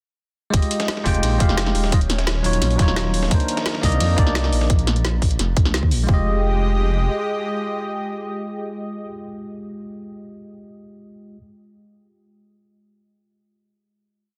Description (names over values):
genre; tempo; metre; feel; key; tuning
liquid drum and bass; 173 BPM; 4/4; straight; F minor; A4 = 440 Hz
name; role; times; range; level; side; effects
bell-like tine electric piano; accompaniment; 0.5-11.4 s; Gb3 to G5; -28 LUFS; equal; tape echo
lush unison pad; sustained chords; 0.5-9.1 s; Eb3 to Eb5; -31 LUFS; equal; chorus, sidechain pumping
dark detuned saw bass; bass; 0.5-7.1 s; Eb1 to F2; -23 LUFS; equal; none
drum and bass drum kit; drums; 0.5-6.0 s; hi-hat, snare drum; -28 LUFS; equal; none
dusty soul sampler-style drum kit; drums; 0.5-4.7 s; hi-hat, snare drum; -32 LUFS; equal; high-pass filter on hats, high-pass filter on snare
electronic kick drum; drums; 0.5-6.2 s; none; -20 LUFS; equal; none
room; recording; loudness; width
little or no reverb; dense, heavily limited modern master; -20 LUFS; mono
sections
0.5-6.1 drop; 6.1-8.9 final chord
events
drop 0.5-6.1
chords
0.5 Fm9; 1.9 Ebm9; 3.3 Cm9; 4.7 N.C.; 6.1 Fm9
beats
| 0.54 0.88 1.23 1.58 | 1.93 2.27 2.62 2.96 | 3.31 3.66 4.01 4.35 | 4.70 5.05 5.39 5.74 | 6.09 6.43 6.78 7.13 | 7.47 7.82 8.17 8.51